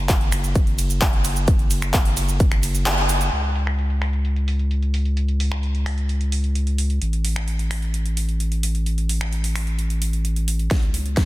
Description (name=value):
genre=EDM, festival progressive house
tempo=130 BPM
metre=4/4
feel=straight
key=unclear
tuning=A4 = 440 Hz
part: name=saturated sub bass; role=bass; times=0.0-11.3 s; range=F#1 to C#2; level=-21 LUFS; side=equal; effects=sidechain pumping
part: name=big-room dance drum kit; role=drums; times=0.1-11.3 s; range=finger snaps, handclaps, hi-hat, ride cymbal, shaker, snare drum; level=-26 LUFS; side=equal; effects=high-pass filter on hats, low-pass filter on hats, high-pass filter on cymbals, low-pass filter on cymbals, high-pass filter on perc, low-pass filter on perc, high-pass filter on snare, low-pass filter on snare, high-pass filter on room, low-pass filter on room
part: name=electronic kick drum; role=drums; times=0.1-2.5, 10.7-11.3 s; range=none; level=-18 LUFS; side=equal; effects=none
room=light reverb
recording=dense, heavily limited modern master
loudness=-19 LUFS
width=side -17 dB against mid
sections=0.0-3.3 A section; 3.3-10.7 B section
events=drop 0.0-3.3; kick drops out 2.9-3.3; band accent 2.9; filter sweep on drum 3.3-10.7; drum fill 10.7-11.3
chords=none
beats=0.09 0.56 1.02 | 1.48 1.94 2.40 2.86 | 3.32 3.79 4.25 4.71 | 5.17 5.63 6.09 6.55 | 7.02 7.48 7.94 8.40 | 8.86 9.32 9.79 10.25 | 10.71 11.17